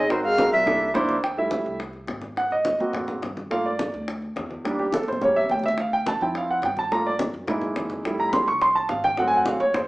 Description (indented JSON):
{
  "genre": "Afro-Cuban jazz",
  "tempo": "212 BPM",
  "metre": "4/4",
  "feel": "straight",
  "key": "F major",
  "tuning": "A4 = 439 Hz",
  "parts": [
    { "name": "bright reedy silver concert flute", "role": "melody", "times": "0.0-0.9 s", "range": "C5 to F5", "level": "-21 LUFS", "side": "equal", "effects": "none" },
    { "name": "breathy trombone", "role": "second line", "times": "0.0-0.9 s", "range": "Eb3 to Ab3", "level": "-26 LUFS", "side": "equal", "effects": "none" },
    { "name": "upright bass", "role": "bass", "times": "0.0-9.9 s", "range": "Ab1 to Ab2", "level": "-38 LUFS", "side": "equal", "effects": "none" },
    { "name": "warm concert grand piano", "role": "accompaniment", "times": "0.1-9.9 s", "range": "F3 to Db6", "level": "-22 LUFS", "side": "right 1 dB", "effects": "none" },
    { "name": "bongos", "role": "percussion", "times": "0.1-9.9 s", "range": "none", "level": "-34 LUFS", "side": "left 2 dB", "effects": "none" },
    { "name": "congas", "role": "percussion", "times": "0.1-9.9 s", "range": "none", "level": "-32 LUFS", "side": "left 1 dB", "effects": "none" }
  ],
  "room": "wet large studio reverb, RT60 0.9 s",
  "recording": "band playing live in one room, small speaker sound",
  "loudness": "-21 LUFS",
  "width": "side -20 dB against mid",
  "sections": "0.0-1.2 A section; 1.2-9.9 B section",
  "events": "grand piano solo 1.2-9.9; drum fill 4.9-5.8",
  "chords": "0.1 Ab9; 0.7 C13; 1.2 Fmaj9; 2.4 Ab9; 3.5 Gm7; 4.6 Em7b5; 5.2 A7b9; 5.8 Dm9; 6.9 Gm7; 7.5 Gb13; 8.1 Fmaj9; 9.2 Ab7b9",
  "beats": "| 0.10 0.39 0.67 0.96 | 1.24 1.52 1.81 2.09 | 2.38 2.66 2.95 3.23 | 3.51 3.80 4.08 4.37 | 4.65 4.93 5.22 5.50 | 5.78 6.07 6.35 6.63 | 6.92 7.20 7.48 7.77 | 8.05 8.33 8.62 8.90 | 9.18 9.46 9.75"
}